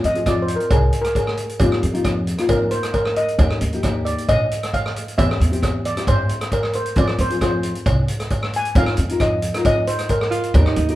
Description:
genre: calypso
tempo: 134 BPM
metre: 4/4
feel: straight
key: unclear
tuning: A4 = 442 Hz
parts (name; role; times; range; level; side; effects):
- nylon-string guitar; accompaniment; 0.0-11.0 s; Bb3 to Bb4; -25 LUFS; left 3 dB; none
- upright bass; bass; 0.0-11.0 s; Bb1 to G2; -21 LUFS; equal; none
- street-band drum kit; drums; 0.0-11.0 s; hi-hat, kick drum, rim click; -22 LUFS; equal; none
- steel pan; melody; 0.1-10.3 s; G4 to Ab5; -22 LUFS; equal; none
- cowbell; percussion; 0.3-10.7 s; none; -28 LUFS; right 2 dB; none
- breathy alto saxophone; second line; 10.3-11.0 s; Eb4 to F4; -22 LUFS; right 4 dB; none
room: moderate large studio reverb, RT60 0.9 s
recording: band playing live in one room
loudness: -17 LUFS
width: side -15 dB against mid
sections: 0.0-11.0 A section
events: steel pan solo 0.0-11.0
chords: 0.0 Fm; 1.6 Bbsus4/F; 3.4 Ebadd9; 5.2 C/E; 7.0 Fm; 8.8 Bbsus4/F

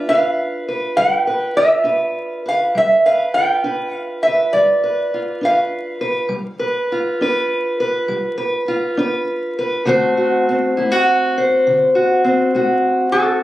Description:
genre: acoustic country blues, solo or duo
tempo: 68 BPM (dotted quarters)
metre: 12/8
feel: straight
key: unclear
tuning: A4 = 439 Hz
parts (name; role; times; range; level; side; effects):
- metal-body resonator slide guitar; melody; 0.0-6.6, 13.1-13.4 s; A4 to G5; -15 LUFS; right 1 dB; plate reverb
- fingerpicked steel-string acoustic guitar; accompaniment; 0.0-13.4 s; D3 to C5; -17 LUFS; equal; none
room: moderate booth ambience, RT60 0.2 s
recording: recorded on a phone in the room, club reverb, vinyl crackle, compression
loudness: -15 LUFS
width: side -15 dB against mid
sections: 0.0-13.4 A section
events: none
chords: 0.0 G7; 9.9 D7

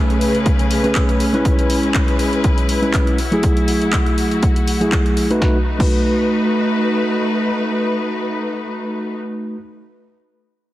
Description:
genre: nu-disco, nu disco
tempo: 121 BPM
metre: 4/4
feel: swing 55% on 16ths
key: B mixolydian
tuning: A4 = 438 Hz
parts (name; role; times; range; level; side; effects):
- mellow tine electric piano; accompaniment; 0.0-9.6 s; F#3 to B4; -19 LUFS; right 1 dB; sidechain pumping, low-pass filter, analog delay
- clear studio string section; sustained chords; 0.0-9.2 s; C#3 to B4; -23 LUFS; left 2 dB; vintage 12-bit sampler grit, sidechain pumping
- house drum kit; drums; 0.1-5.9 s; crash cymbal, handclaps, hi-hat, snare drum; -26 LUFS; equal; none
- electronic kick drum; drums; 0.5-5.9 s; none; -17 LUFS; equal; none
room: light reverb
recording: heavily compressed radio sound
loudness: -15 LUFS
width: side -15 dB against mid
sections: 0.0-5.4 A section; 5.4-9.4 B section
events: filter sweep on tine electric piano 0.0-5.4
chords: 0.0 Amaj9/C#; 1.5 E6; 3.2 F#m9; 5.4 B7

